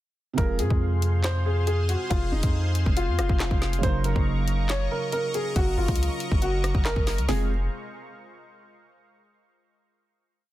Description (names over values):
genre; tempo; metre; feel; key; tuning
hip hop, drill; 139 BPM; 4/4; half-time; F phrygian; A4 = 441 Hz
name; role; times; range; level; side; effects
felt-muted upright piano; accompaniment; 0.3-7.5 s; C3 to Bb4; -33 LUFS; right 6 dB; none
dark baby grand piano; melody; 0.4-7.5 s; Eb4 to Db5; -30 LUFS; left 1 dB; ping-pong delay
sweeping resonant pad; sustained chords; 0.4-7.5 s; Ab3 to Db6; -36 LUFS; left 1 dB; chorus
long sustained 808-style bass; bass; 0.4-7.7 s; F1 to Ab2; -25 LUFS; equal; none
drill drum kit; drums; 0.4-7.4 s; handclaps, hi-hat, kick drum, rim click, snare drum; -26 LUFS; equal; none
room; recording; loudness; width
digital ambience; dense, heavily limited modern master; -22 LUFS; side -15 dB against mid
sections
0.4-7.3 hook; 7.3-9.0 final chord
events
none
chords
0.4 Fm; 3.8 Gb6; 7.3 Fm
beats
| 0.38 0.81 1.24 1.68 | 2.11 2.54 2.97 3.40 | 3.83 4.26 4.70 5.13 | 5.56 5.99 6.42 6.86 | 7.29